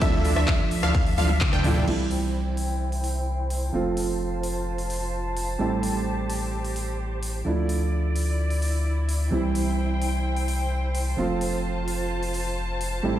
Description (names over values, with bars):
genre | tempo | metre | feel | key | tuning
EDM, festival progressive house | 129 BPM | 4/4 | straight | C major | A4 = 440 Hz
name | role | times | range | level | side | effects
felt-muted upright piano | accompaniment | 0.0-13.2 s | A2 to E5 | -29 LUFS | right 4 dB | sidechain pumping, ping-pong delay
warm chamber string section | sustained chords | 0.0-13.2 s | F3 to A5 | -32 LUFS | equal | sidechain pumping, low-pass filter
wide unison pluck | arpeggios | 0.0-1.8 s | E5 to G5 | -31 LUFS | equal | phaser, sidechain pumping, ping-pong delay
dense compressed supersaw | riff | 0.0-1.8 s | D4 to G5 | -31 LUFS | right 1 dB | sidechain pumping, low-pass filter, ping-pong delay
saturated sub bass | bass | 0.0-13.2 s | F1 to D2 | -26 LUFS | left 1 dB | sidechain pumping
big-room dance drum kit | drums | 0.0-12.9 s | crash cymbal, handclaps, hi-hat, ride cymbal, rim click, toms | -33 LUFS | left 1 dB | none
electronic kick drum | drums | 0.0-1.5 s | none | -23 LUFS | left 1 dB | none
room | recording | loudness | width
light reverb | played on a big sound system in a bare room, stone room reverb | -23 LUFS | side -12 dB against mid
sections
0.0-1.9 A section; 1.9-13.2 B section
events
drop 0.0-1.9; drum fill 1.2-1.9; band accent 1.4; filter sweep on string section 1.9-13.2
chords
0.0 Dmadd9; 1.9 C; 3.7 F; 5.6 Am7; 7.5 Dmadd9; 9.3 C; 11.2 F